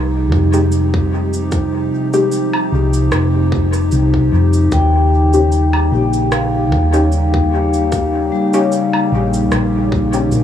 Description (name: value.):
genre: ambient dub.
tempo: 75 BPM.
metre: 4/4.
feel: swing 54% on 16ths.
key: unclear.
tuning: A4 = 440 Hz.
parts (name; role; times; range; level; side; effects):
warbly tape-like pad; sustained chords; 0.0-10.4 s; C3 to G4; -18 LUFS; equal; chorus, built-in reverb.
vibraphone with soft mallets; arpeggios; 0.0-10.4 s; G3 to G5; -22 LUFS; left 3 dB; tape echo.
hollow-body short-scale fingered electric bass; bass; 0.0-10.4 s; F1 to F2; -15 LUFS; equal; tube saturation.
electronic kick drum; drums; 0.3-10.1 s; none; -19 LUFS; equal; none.
filtered dub chord stab; stabs; 0.5-10.3 s; Ab3 to G4; -21 LUFS; left 3 dB; chorus, dub echo.
electronic cabasa, woodblock and rim click; drums; 0.5-10.4 s; none; -26 LUFS; right 1 dB; dub echo.
room: light reverb.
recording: small room ambience.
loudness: -12 LUFS.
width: side -10 dB against mid.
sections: 0.0-10.4 A section.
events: none.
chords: 0.0 Fm9; 4.7 Eb7.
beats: 0.72 | 1.52 2.32 3.12 3.92 | 4.72 5.52 6.32 7.12 | 7.92 8.72 9.52 10.32.